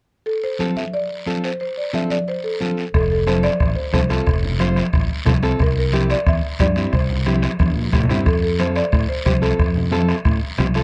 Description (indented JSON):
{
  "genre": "latin, cumbia",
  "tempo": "180 BPM",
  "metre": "4/4",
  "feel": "straight",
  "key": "F major",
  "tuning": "A4 = 439 Hz",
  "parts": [
    { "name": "buzzing marimba with medium hard mallets", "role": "melody", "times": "0.3-9.7 s", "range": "A4 to E5", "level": "-26 LUFS", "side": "equal", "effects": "none" },
    { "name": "guiro", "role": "percussion", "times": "0.3-10.8 s", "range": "none", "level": "-34 LUFS", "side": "equal", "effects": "none" },
    { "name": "nylon-string guitar", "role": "accompaniment", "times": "0.6-10.8 s", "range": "C4 to C5", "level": "-26 LUFS", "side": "equal", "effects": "none" },
    { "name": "congas", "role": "percussion", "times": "0.6-10.7 s", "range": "none", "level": "-26 LUFS", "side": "equal", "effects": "none" },
    { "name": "fingered electric bass", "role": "bass", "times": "2.9-10.8 s", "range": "F1 to Bb2", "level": "-23 LUFS", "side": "equal", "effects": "none" },
    { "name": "bombo", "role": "percussion", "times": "2.9-10.8 s", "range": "none", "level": "-23 LUFS", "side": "equal", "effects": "none" }
  ],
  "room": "little or no reverb",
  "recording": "dark, warm production",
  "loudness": "-19 LUFS",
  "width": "mono",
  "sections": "0.3-2.9 A section; 2.9-10.8 B section",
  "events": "drum fill 7.6-8.3",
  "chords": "0.3 F; 5.6 C; 8.3 F",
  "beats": "| 0.27 0.60 0.94 1.27 | 1.60 1.94 2.27 2.61 | 2.94 3.27 3.60 3.94 | 4.27 4.60 4.94 5.27 | 5.60 5.93 6.27 6.60 | 6.93 7.26 7.60 7.93 | 8.26 8.59 8.92 9.26 | 9.59 9.92 10.25 10.58"
}